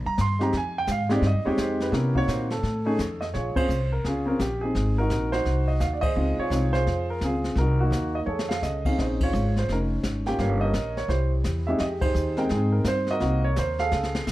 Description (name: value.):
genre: jazz piano trio.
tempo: 170 BPM.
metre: 4/4.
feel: swing 64% on 8ths.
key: F minor.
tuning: A4 = 441 Hz.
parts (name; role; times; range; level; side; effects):
upright bass; bass; 0.0-14.3 s; F1 to C3; -26 LUFS; equal; none.
warm concert grand piano; melody; 0.1-14.3 s; Ab3 to C6; -26 LUFS; right 1 dB; none.
jazz brush drum kit; drums; 0.2-14.3 s; brushed snare drum, crash cymbal, hi-hat, kick drum, snare drum; -32 LUFS; left 1 dB; none.
room: light reverb.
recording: dark, warm production.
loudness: -22 LUFS.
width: side -16 dB against mid.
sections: 0.0-3.3 A section; 3.3-14.3 B section.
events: grand piano solo 0.0-3.3; band accent 3.5, 6.0, 9.2, 12.0; drum fill 8.3-8.6, 13.9-14.3.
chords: 0.0 C5; 0.5 Fm9; 1.9 Cm7b5; 2.6 F7; 3.3 Bbm7; 4.8 Ab9; 6.2 Dbmaj7; 7.6 Cm7b5; 8.3 F7alt; 9.0 Bbm11; 10.4 Gm7b5; 11.1 C; 11.8 Fm9; 13.2 Cm7b5.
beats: 0.19 | 0.54 0.89 1.24 1.59 | 1.94 2.29 2.64 3.00 | 3.35 3.70 4.05 4.40 | 4.75 5.11 5.46 5.81 | 6.16 6.51 6.87 7.22 | 7.57 7.92 8.28 8.63 | 8.98 9.33 9.69 10.04 | 10.39 10.74 11.10 11.45 | 11.80 12.15 12.51 12.86 | 13.21 13.56 13.92 14.27.